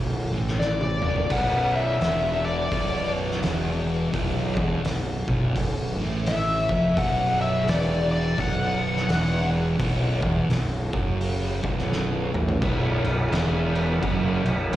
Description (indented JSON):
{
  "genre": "stoner and doom metal",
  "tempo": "85 BPM",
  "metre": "4/4",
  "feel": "swing 61% on 8ths",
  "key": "B minor",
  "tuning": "A4 = 438 Hz",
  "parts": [
    { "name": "thick fuzz guitar", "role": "riff", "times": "0.0-14.8 s", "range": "B1 to A2", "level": "-26 LUFS", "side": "equal", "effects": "distortion" },
    { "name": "fuzz fingered electric bass", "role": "bass", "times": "0.0-14.8 s", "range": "B0 to A1", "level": "-27 LUFS", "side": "equal", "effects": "overdrive" },
    { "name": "oversized low-tuned drum kit", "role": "drums", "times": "0.5-14.8 s", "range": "crash cymbal, hi-hat, kick drum, snare drum, toms", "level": "-28 LUFS", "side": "equal", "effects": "none" },
    { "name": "fuzz lead guitar", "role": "melody", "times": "0.6-9.5 s", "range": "D5 to F#5", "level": "-26 LUFS", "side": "left 2 dB", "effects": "wah, distortion, slapback echo, analog delay" }
  ],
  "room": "small room ambience",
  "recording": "live gig heard through the venue's PA, recital hall reverb",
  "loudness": "-22 LUFS",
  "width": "side -14 dB against mid",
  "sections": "0.0-12.6 A section; 12.6-14.8 B section",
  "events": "drum fill 0.6-1.3, 11.9-12.6",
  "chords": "0.0 N.C.; 12.6 B5"
}